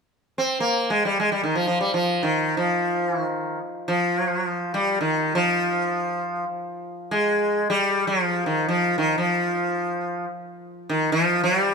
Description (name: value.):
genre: indian classical.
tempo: free time.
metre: none.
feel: none.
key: F raga darbari.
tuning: A4 = 440 Hz.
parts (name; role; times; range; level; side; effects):
sitar; solo; 0.4-11.7 s; Eb3 to C4; -21 LUFS; equal; none.
room: light reverb.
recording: close, detailed microphones.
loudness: -21 LUFS.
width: side -5 dB against mid.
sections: 0.1-11.7 A section.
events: none.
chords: none.